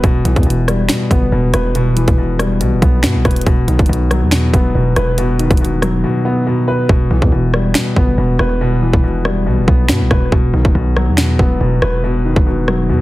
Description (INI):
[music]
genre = hip hop, drill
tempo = 140 BPM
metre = 4/4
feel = half-time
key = E harmonic minor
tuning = A4 = 440 Hz
[part]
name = dark grand piano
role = accompaniment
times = 0.0-13.0 s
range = B2 to B4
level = -16 LUFS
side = left 1 dB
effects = none
[part]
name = hard-hitting 808-style bass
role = bass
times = 0.0-13.0 s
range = E1 to G2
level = -16 LUFS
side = equal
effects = none
[part]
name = drill drum kit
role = drums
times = 0.0-12.8 s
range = finger snaps, hi-hat, kick drum, rim click, snare drum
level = -15 LUFS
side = equal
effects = none
[sound]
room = little or no reverb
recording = heavily compressed radio sound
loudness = -12 LUFS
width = side -18 dB against mid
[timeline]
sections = 0.0-13.0 A section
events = drums muted 6.0-6.9; hi-hats muted 6.9-13.0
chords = 0.0 Em; 3.5 B/E; 6.9 Em; 10.3 B/E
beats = | 0.04 0.47 0.89 1.32 | 1.75 2.18 2.61 3.04 | 3.46 3.89 4.32 4.75 | 5.18 5.61 6.04 6.46 | 6.89 7.32 7.75 8.18 | 8.61 9.04 9.46 9.89 | 10.32 10.75 11.18 11.61 | 12.04 12.46 12.89